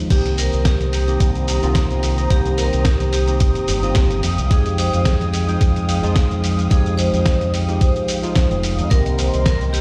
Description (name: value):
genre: nu-disco, nu disco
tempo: 109 BPM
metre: 4/4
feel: swing 54% on 16ths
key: C minor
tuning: A4 = 440 Hz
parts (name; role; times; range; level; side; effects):
- bell-like tine electric piano; accompaniment; 0.0-9.8 s; Eb3 to G5; -28 LUFS; equal; analog delay
- vibraphone with hard mallets; melody; 0.1-9.8 s; G4 to C5; -28 LUFS; equal; tape echo
- muted studio string section; sustained chords; 0.1-9.8 s; Ab3 to Eb6; -30 LUFS; equal; sidechain pumping
- fingered electric bass with an envelope filter; bass; 0.1-9.8 s; F1 to F2; -22 LUFS; equal; sidechain pumping
- dusty soul sampler-style drum kit; drums; 0.1-9.8 s; crash cymbal, hi-hat, shaker, snare drum; -29 LUFS; equal; none
- electronic kick drum; drums; 0.1-9.6 s; none; -18 LUFS; equal; none
room: light reverb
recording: played on a big sound system in a bare room, stone room reverb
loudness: -18 LUFS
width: mono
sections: 0.0-9.8 A section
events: none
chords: 0.1 Cm7; 4.2 Fm9; 8.9 Cm7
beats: | 0.10 0.66 1.21 1.76 | 2.31 2.86 3.41 3.96 | 4.51 5.06 5.61 6.16 | 6.71 7.26 7.81 8.36 | 8.91 9.46